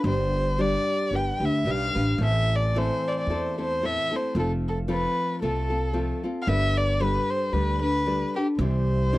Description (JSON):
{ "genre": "mexican folk, mariachi", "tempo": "112 BPM", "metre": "4/4", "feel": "swing 54% on 8ths", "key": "unclear", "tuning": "A4 = 438 Hz", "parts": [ { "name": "dark violin", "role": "melody", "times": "0.0-9.2 s", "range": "G4 to G5", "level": "-27 LUFS", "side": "equal", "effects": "none" }, { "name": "nylon-string guitar", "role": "accompaniment", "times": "0.0-9.2 s", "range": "A2 to C5", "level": "-28 LUFS", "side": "left 1 dB", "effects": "none" }, { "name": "upright bass", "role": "bass", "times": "0.0-9.2 s", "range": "F1 to E2", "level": "-26 LUFS", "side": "right 1 dB", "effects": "none" } ], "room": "little or no reverb", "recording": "dry, close 1970s-style studio recording", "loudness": "-23 LUFS", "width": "side -18 dB against mid", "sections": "0.0-9.2 A section", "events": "none", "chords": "0.0 Gsus4; 1.1 G; 2.2 Am; 4.3 F; 6.5 Gadd9; 8.6 C" }